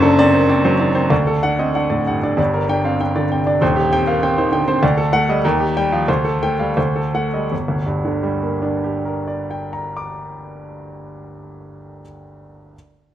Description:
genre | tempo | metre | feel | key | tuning
classical, virtuoso piano study | 78-100 BPM | 2/4 | rubato | G minor | A4 = 444 Hz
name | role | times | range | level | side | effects
clear baby grand piano | solo | 0.0-12.8 s | Eb1 to D6 | -16 LUFS | equal | none
room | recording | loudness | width
moderate recital hall reverb, RT60 1.4 s | close, detailed microphones | -15 LUFS | side -11 dB against mid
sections
0.0-7.5 A section; 7.5-10.6 B section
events
slowing down 4.2-7.5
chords
0.0 D7/F#; 1.1 D; 2.4 Gm; 3.6 Cm/Eb; 4.8 D; 5.4 Eb; 6.1 D7sus4; 6.8 D7; 7.5 Gm

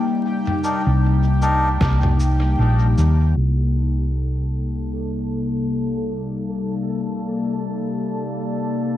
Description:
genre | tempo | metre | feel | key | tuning
ambient dub | 77 BPM | 4/4 | swing 58% on 16ths | C dorian | A4 = 440 Hz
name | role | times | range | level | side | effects
warbly tape-like pad | sustained chords | 0.0-9.0 s | C3 to D5 | -23 LUFS | left 3 dB | chorus, built-in reverb
bubbling stepped-filter texture | texture | 0.0-9.0 s | G4 to A5 | -32 LUFS | right 2 dB | chorus, built-in reverb
lo-fi sampler-style drum kit | drums | 0.5-3.2 s | cabasa, snare drum, toms | -29 LUFS | equal | dub echo
melodica | stabs | 0.6-1.7 s | D4 to Bb4 | -25 LUFS | left 1 dB | dub echo
hollow-body short-scale fingered electric bass | bass | 0.9-9.0 s | Bb1 to Eb2 | -18 LUFS | equal | tube saturation
electronic kick drum | drums | 1.8-2.0 s | none | -24 LUFS | equal | none
room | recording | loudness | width
moderate church reverb, RT60 3.0 s | dreamy mix soaked in reverb, vinyl crackle, low-pass filter | -18 LUFS | side -12 dB against mid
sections
0.0-3.4 A section; 3.4-9.0 B section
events
filter sweep 3.4-9.0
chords
0.0 Cm7

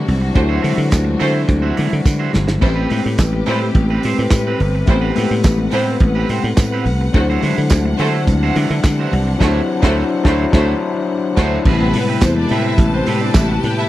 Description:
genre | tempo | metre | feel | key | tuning
disco | 106 BPM | 4/4 | straight | A dorian | A4 = 440 Hz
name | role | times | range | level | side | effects
overdriven tine electric piano | accompaniment | 0.0-13.9 s | C3 to C5 | -21 LUFS | left 4 dB | none
clear studio string section | sustained chords | 0.0-13.9 s | C3 to A5 | -24 LUFS | left 1 dB | none
dry thumbed slap bass | bass | 0.1-13.9 s | G1 to D3 | -18 LUFS | equal | none
warm soul drum kit | drums | 0.1-13.8 s | crash cymbal, handclaps, hi-hat, kick drum, snare drum | -16 LUFS | right 1 dB | none
congas | percussion | 0.1-13.8 s | none | -25 LUFS | left 4 dB | none
electric guitar at the edge of break-up | accompaniment | 0.2-13.8 s | C4 to D5 | -26 LUFS | right 8 dB | spring reverb
rich studio violin section | second line | 0.3-13.9 s | G3 to G5 | -22 LUFS | right 2 dB | none
tambourine | percussion | 0.9-13.5 s | none | -32 LUFS | right 13 dB | none
room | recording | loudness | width
small room ambience | dry, close 1970s-style studio recording | -13 LUFS | side -15 dB against mid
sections
0.0-11.7 A section; 11.7-13.9 B section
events
drum fill 2.1-2.6; band accent 9.4-11.7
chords
0.0 D9; 2.6 Am9; 7.1 D9; 11.7 Am9

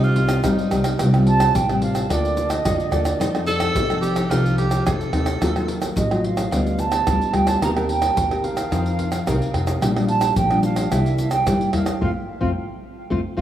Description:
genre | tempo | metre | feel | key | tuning
samba and choro | 109 BPM | 4/4 | straight | unclear | A4 = 440 Hz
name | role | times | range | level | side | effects
breathy tenor saxophone | second line | 0.0-5.8 s | Eb4 to A4 | -25 LUFS | equal | none
nylon-string guitar | accompaniment | 0.0-13.4 s | G2 to Bb4 | -23 LUFS | left 2 dB | analog chorus
upright bass | bass | 0.0-13.4 s | A1 to F3 | -24 LUFS | equal | none
egg shaker, pandeiro, surdo and tamborim | percussion | 0.0-13.4 s | none | -24 LUFS | right 1 dB | none
baroque flute | melody | 1.3-13.4 s | D5 to Bb5 | -24 LUFS | right 4 dB | diffuse ambient delay
room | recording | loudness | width
moderate plate reverb, RT60 3.0 s | dreamy mix soaked in reverb, small room ambience | -18 LUFS | side -11 dB against mid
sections
0.0-13.4 A section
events
band accent 12.0-13.4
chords
0.0 Cm; 1.0 Fsus2/C; 2.1 Bbmaj7/D; 3.2 F7; 5.4 Ebmadd9; 6.5 G7/D; 7.6 Cm7/Eb; 8.7 F7sus4; 9.8 Bb6; 10.9 C7; 12.0 F

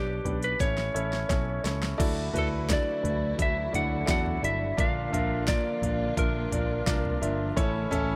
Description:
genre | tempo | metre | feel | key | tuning
piano-driven pop | 86 BPM | 4/4 | straight | unclear | A4 = 440 Hz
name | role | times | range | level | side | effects
lightly driven lead guitar | melody | 0.0-7.2 s | G4 to F#5 | -34 LUFS | equal | none
warm concert grand piano | accompaniment | 0.0-8.2 s | A2 to F5 | -35 LUFS | equal | none
picked electric bass | bass | 0.0-8.2 s | G1 to E2 | -34 LUFS | equal | none
pop drum kit | drums | 0.3-8.1 s | crash cymbal, hi-hat, kick drum, snare drum, toms | -33 LUFS | equal | none
warm symphonic string section | sustained chords | 2.0-8.2 s | C#3 to F4 | -41 LUFS | equal | none
fingerpicked plugged-in steel-string acoustic guitar | riff | 2.0-8.2 s | A2 to Bb4 | -39 LUFS | equal | none
room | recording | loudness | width
light reverb, digital ambience | none | -28 LUFS | mono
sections
0.0-2.0 A section; 2.0-8.2 B section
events
drum fill 0.6-2.0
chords
0.0 G/B; 0.6 A; 2.0 Dadd9; 4.8 Bb; 7.6 A

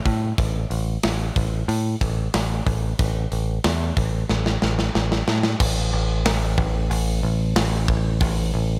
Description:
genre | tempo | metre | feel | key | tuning
hard rock | 92 BPM | 4/4 | straight | unclear | A4 = 441 Hz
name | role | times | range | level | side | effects
picked electric bass | bass | 0.1-8.8 s | A1 to A2 | -24 LUFS | equal | none
tight metal drum kit | drums | 0.1-8.4 s | crash cymbal, hi-hat, kick drum, snare drum | -26 LUFS | equal | none
room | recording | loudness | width
little or no reverb | none | -22 LUFS | mono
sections
0.0-5.6 A section; 5.6-8.8 B section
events
drum fill 4.3-5.6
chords
none

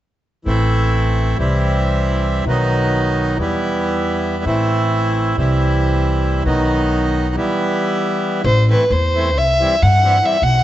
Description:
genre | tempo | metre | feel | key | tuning
balkan folk, Balkan wedding band | 271 BPM (eighths) | 9/8 | straight | A dorian sharp4 | A4 = 440 Hz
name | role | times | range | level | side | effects
accordion | accompaniment | 0.5-10.4 s | D#3 to E4 | -18 LUFS | right 1 dB | none
upright bass | bass | 0.5-10.6 s | A1 to G2 | -18 LUFS | equal | none
dark violin | melody | 8.4-10.6 s | B4 to F#5 | -15 LUFS | equal | none
room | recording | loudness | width
light reverb | nothing above 7.9 kHz | -14 LUFS | side -13 dB against mid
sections
0.5-8.4 A section; 8.4-10.6 B section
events
none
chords
0.5 Am; 1.4 C; 2.5 B; 3.4 Em; 4.5 Am; 5.3 C; 6.5 B; 7.3 Em; 8.4 Am; 9.3 C

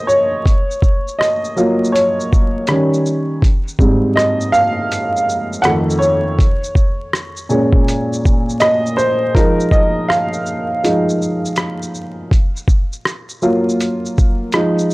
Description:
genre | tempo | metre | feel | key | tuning
lo-fi hip hop | 81 BPM | 4/4 | swing 65% on 16ths | unclear | A4 = 440 Hz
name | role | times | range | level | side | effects
warm upright piano | accompaniment | 0.0-14.9 s | F2 to Gb5 | -15 LUFS | equal | cassette tape
lo-fi sampler-style drum kit | drums | 0.1-14.9 s | hi-hat, kick drum, rim click, shaker | -15 LUFS | equal | none
room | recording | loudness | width
little or no reverb | dry, gritty hardware recording, vinyl crackle | -13 LUFS | side -21 dB against mid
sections
0.0-14.9 A section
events
upright piano solo 0.0-14.9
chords
0.5 Gbmaj7; 2.7 Eb7; 3.4 Abmaj7; 5.6 F7; 6.4 Bbm7; 9.4 Fm7; 12.3 Gbmaj7

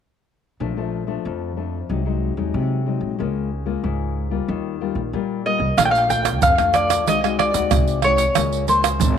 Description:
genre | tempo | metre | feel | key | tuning
samba and choro | 93 BPM | 4/4 | straight | unclear | A4 = 442 Hz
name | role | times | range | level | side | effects
nylon-string guitar | accompaniment | 0.6-9.2 s | F2 to Gb4 | -25 LUFS | left 11 dB | none
upright bass | bass | 0.6-9.2 s | Ab1 to Eb3 | -25 LUFS | right 1 dB | none
mandolin | melody | 5.5-9.2 s | C5 to G5 | -18 LUFS | equal | slapback echo
egg shaker, surdo, pandeiro and tamborim | percussion | 5.8-9.2 s | none | -20 LUFS | right 7 dB | none
room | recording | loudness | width
light reverb, studio ambience | 1960s-style stereo with parts hard left and right | -18 LUFS | side -8 dB against mid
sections
0.6-5.8 A section; 5.8-9.2 B section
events
none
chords
0.6 Bbmaj7; 1.9 Ab7/C; 3.2 Db6; 4.5 Ebadd9; 5.8 Bbmaj7; 7.1 Ab7/C; 8.4 Db6

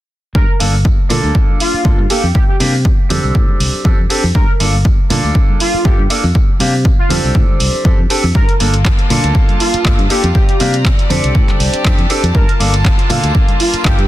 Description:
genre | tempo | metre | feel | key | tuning
filtered disco house | 120 BPM | 4/4 | swing 54% on 16ths | G minor | A4 = 439 Hz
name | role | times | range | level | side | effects
analog synth brass | melody | 0.3-14.0 s | F4 to Bb4 | -20 LUFS | right 1 dB | chorus, sidechain pumping, low-pass filter
fingered electric bass | bass | 0.3-14.1 s | G1 to C3 | -16 LUFS | equal | tube saturation, sidechain pumping, low-pass filter
electronic kick drum | drums | 0.3-14.0 s | none | -12 LUFS | equal | none
tambourine and congas | percussion | 0.4-14.0 s | none | -24 LUFS | right 4 dB | sidechain pumping on perc, low-pass filter on perc
clear baby grand piano | accompaniment | 0.6-14.0 s | Bb3 to A4 | -20 LUFS | equal | phaser, sidechain pumping, low-pass filter
punchy analog drum machine | drums | 0.6-14.1 s | handclaps, hi-hat | -20 LUFS | right 1 dB | sidechain pumping on hats
rich chamber violin section | sustained chords | 8.4-14.1 s | Bb3 to Bb5 | -23 LUFS | left 2 dB | sidechain pumping, low-pass filter
room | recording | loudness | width
little or no reverb | dense, heavily limited modern master | -10 LUFS | side -15 dB against mid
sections
0.4-14.1 A section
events
none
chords
0.4 Gm9; 2.4 C9sus4; 3.1 F69; 4.4 Gm9; 6.4 C9sus4; 7.1 F69; 8.4 Gm9; 10.4 C9sus4; 11.1 F69; 12.4 Gm9

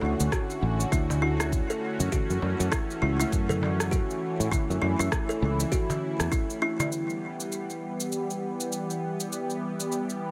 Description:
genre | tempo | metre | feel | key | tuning
organic downtempo | 100 BPM | 4/4 | swing 59% on 16ths | E dorian | A4 = 440 Hz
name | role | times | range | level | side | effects
warm analog pad | sustained chords | 0.0-10.3 s | D3 to G4 | -34 LUFS | equal | chorus, sidechain pumping
sustaining fretless electric bass | bass | 0.0-6.3 s | A1 to A2 | -30 LUFS | equal | sidechain pumping
darbuka | percussion | 0.0-6.9 s | none | -38 LUFS | equal | none
electronic shaker and rim click | drums | 0.2-10.2 s | none | -36 LUFS | equal | none
kalimba | arpeggios | 0.3-6.9 s | E4 to A4 | -34 LUFS | equal | digital delay
electronic kick drum | drums | 0.3-6.5 s | none | -31 LUFS | equal | none
room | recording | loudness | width
light reverb, digital ambience | none | -28 LUFS | mono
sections
0.0-6.9 A section; 6.9-10.3 B section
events
none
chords
0.0 Dmaj7; 2.1 F#m7; 6.9 Em

